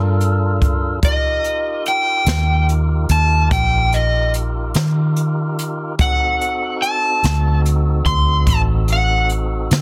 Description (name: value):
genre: slow blues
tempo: 48 BPM (dotted quarters)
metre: 12/8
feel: straight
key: unclear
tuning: A4 = 436 Hz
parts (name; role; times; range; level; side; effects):
- tonewheel organ; sustained chords; 0.0-9.8 s; C4 to Bb4; -29 LUFS; equal; slow rotary speaker
- vintage muted fingered electric bass; bass; 0.0-9.8 s; A1 to Eb3; -19 LUFS; equal; none
- jazz brush drum kit; drums; 0.2-9.8 s; hi-hat, kick drum, snare drum; -22 LUFS; equal; none
- overdriven slide guitar; melody; 1.0-9.3 s; Eb5 to C6; -21 LUFS; equal; none
room: small room ambience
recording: dense, heavily limited modern master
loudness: -17 LUFS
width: mono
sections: 0.0-9.8 A section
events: none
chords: 0.0 Gm9; 1.0 Eb; 6.0 D7b9